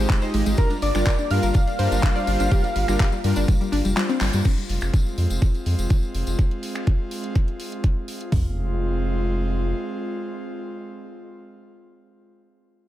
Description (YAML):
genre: progressive house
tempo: 124 BPM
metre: 4/4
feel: straight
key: F dorian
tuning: A4 = 441 Hz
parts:
  - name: airy breathy pad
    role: sustained chords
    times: 0.0-12.3 s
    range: G3 to F4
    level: -31 LUFS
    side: equal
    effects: chorus, sidechain pumping
  - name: analog pluck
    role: arpeggios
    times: 0.0-4.4 s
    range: G3 to D5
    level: -27 LUFS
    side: left 1 dB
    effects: chorus, sidechain pumping, digital delay
  - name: soft supersaw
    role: stabs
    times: 0.0-4.0 s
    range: G3 to Eb5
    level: -28 LUFS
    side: left 1 dB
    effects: sidechain pumping, digital delay
  - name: round analog bass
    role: bass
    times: 0.0-9.7 s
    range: F1 to G2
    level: -23 LUFS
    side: equal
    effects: tube saturation, sidechain pumping
  - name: pop drum kit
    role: drums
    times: 0.1-8.4 s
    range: hi-hat, kick drum, toms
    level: -20 LUFS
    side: equal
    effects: overdrive
  - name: pop drum kit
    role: drums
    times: 0.1-8.3 s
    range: crash cymbal, finger snaps, handclaps, hi-hat, ride cymbal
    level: -31 LUFS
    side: equal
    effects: overdrive
  - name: tambourine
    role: percussion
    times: 0.1-6.4 s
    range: none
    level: -38 LUFS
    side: left 3 dB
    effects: none
  - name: wide unison lead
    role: melody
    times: 0.6-4.0 s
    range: Bb4 to F5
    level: -28 LUFS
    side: equal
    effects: digital delay
  - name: soft round pluck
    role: second line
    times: 0.6-3.9 s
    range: Bb5 to F6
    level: -35 LUFS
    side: right 1 dB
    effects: chorus, sidechain pumping, digital delay
room: little or no reverb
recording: none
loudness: -20 LUFS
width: side -14 dB against mid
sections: 0.0-4.5 A section; 4.5-8.3 B section; 8.3-12.2 C section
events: drop 0.0-4.5; kick drops out 4.0-4.5; drum fill 4.2; band accent 4.2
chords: 0.0 Abmaj7; 0.6 Gm7; 4.5 Fm